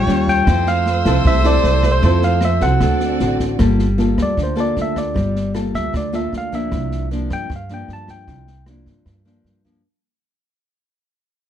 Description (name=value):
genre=bossa nova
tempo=154 BPM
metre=4/4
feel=straight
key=unclear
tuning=A4 = 440 Hz
part: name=barky tine electric piano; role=melody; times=0.0-8.6 s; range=C5 to A5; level=-22 LUFS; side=equal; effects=none
part: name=dark viola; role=second line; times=0.0-3.4 s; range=A4 to Db5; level=-25 LUFS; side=right 2 dB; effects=none
part: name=nylon-string guitar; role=accompaniment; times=0.0-9.8 s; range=G2 to A4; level=-21 LUFS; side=left 1 dB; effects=none
part: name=dark symphonic violin section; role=sustained chords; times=0.0-3.6 s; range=G3 to E6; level=-27 LUFS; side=right 2 dB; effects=none
part: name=upright bass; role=bass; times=0.0-9.8 s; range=G1 to G2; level=-19 LUFS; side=right 1 dB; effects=none
part: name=open jazz drum kit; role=drums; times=0.1-9.7 s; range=kick drum, rim click, snare drum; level=-25 LUFS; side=equal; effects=none
room=light reverb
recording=dark, warm production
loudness=-15 LUFS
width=side -10 dB against mid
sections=0.0-3.6 A section; 3.6-9.8 B section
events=fade-out 3.6-9.8; tine electric piano solo 3.6-9.8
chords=0.5 Fmaj7; 2.8 D7; 3.6 Gm9; 6.7 C9sus4